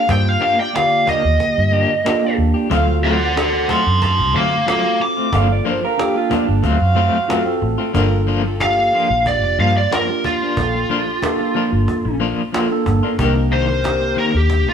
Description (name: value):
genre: straight-eighth soul blues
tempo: 92 BPM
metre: 4/4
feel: straight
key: G minor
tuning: A4 = 439 Hz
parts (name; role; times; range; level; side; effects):
- lead guitar through a small cranked amp; melody; 0.0-14.7 s; F4 to D6; -18 LUFS; equal; overdrive
- mellow tine electric piano; accompaniment; 0.0-14.7 s; D3 to Bb4; -22 LUFS; right 2 dB; phaser
- electric guitar at the edge of break-up; stabs; 0.0-14.7 s; Eb3 to G4; -23 LUFS; left 4 dB; tremolo
- warm horn section; sustained chords; 0.1-14.4 s; C4 to F#5; -26 LUFS; right 2 dB; none
- vintage muted fingered electric bass; bass; 0.1-14.7 s; F1 to D3; -19 LUFS; equal; none
- cajon; drums; 0.1-14.7 s; none; -27 LUFS; equal; none
- electric guitar through a small old amp; second line; 5.3-6.6 s; D4 to F5; -22 LUFS; right 5 dB; none
room: moderate stone room reverb, RT60 1.2 s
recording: band playing live in one room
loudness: -14 LUFS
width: side -7 dB against mid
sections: 0.0-7.9 A section; 7.9-14.7 B section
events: lead electric guitar solo 7.9-14.7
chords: 0.0 Ebmaj7; 2.7 D7#9; 5.3 Gm7; 6.6 D7#9 (rootless); 7.9 Gm7; 13.2 Cm7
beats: | 0.09 0.74 1.40 2.05 | 2.71 3.36 4.02 4.67 | 5.33 5.98 6.64 7.29 | 7.95 8.60 9.26 9.91 | 10.57 11.22 11.88 12.53 | 13.19 13.84 14.50